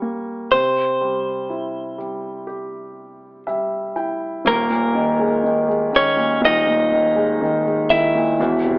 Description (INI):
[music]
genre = pop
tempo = 61 BPM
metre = 4/4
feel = straight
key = unclear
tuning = A4 = 440 Hz
[part]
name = direct-recorded clean electric guitar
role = melody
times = 0.0-8.8 s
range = Bb3 to E5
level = -18 LUFS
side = equal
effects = none
[part]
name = warm concert grand piano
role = accompaniment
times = 0.0-8.8 s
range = Eb1 to G5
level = -20 LUFS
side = equal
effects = none
[sound]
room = moderate studio reverb, RT60 0.7 s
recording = band playing live in one room, AM radio sound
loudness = -16 LUFS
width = side -27 dB against mid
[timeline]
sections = 0.0-4.5 A section; 4.5-8.8 B section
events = grand piano fill 3.0-4.5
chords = 0.0 Bbm6; 0.5 C; 4.5 Eb7sus4